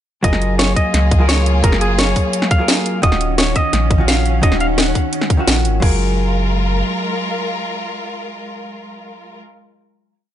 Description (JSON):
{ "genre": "liquid drum and bass", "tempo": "172 BPM", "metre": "4/4", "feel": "straight", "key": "F# major", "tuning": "A4 = 440 Hz", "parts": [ { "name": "semi-hollow electric guitar", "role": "melody", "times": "0.2-5.5 s", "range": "G#4 to F#5", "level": "-21 LUFS", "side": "equal", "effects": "vintage 12-bit sampler grit, ping-pong delay" }, { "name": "vintage hollow-body jazz guitar", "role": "accompaniment", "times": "0.2-9.5 s", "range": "D#3 to A#4", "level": "-21 LUFS", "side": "equal", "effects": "ping-pong delay" }, { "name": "clear symphonic string section", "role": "sustained chords", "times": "0.2-9.4 s", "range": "G#3 to A#4", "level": "-25 LUFS", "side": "left 1 dB", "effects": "none" }, { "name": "warm sub bass", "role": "bass", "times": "0.2-6.8 s", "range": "D#1 to C#2", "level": "-17 LUFS", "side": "equal", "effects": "none" }, { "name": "drum and bass drum kit", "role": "drums", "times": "0.2-5.9 s", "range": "crash cymbal, hi-hat, snare drum", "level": "-19 LUFS", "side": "equal", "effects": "overdrive, small room ambience" }, { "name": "electronic kick drum", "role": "drums", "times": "0.2-5.9 s", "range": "none", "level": "-15 LUFS", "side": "equal", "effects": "overdrive, small room ambience" } ], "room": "little or no reverb", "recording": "nothing above 10.8 kHz", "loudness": "-13 LUFS", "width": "side -11 dB against mid", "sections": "0.2-5.8 drop; 5.8-8.6 final chord", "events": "drop 0.2-5.8", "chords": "0.2 F#maj9; 3.0 D#m9; 5.8 F#maj9" }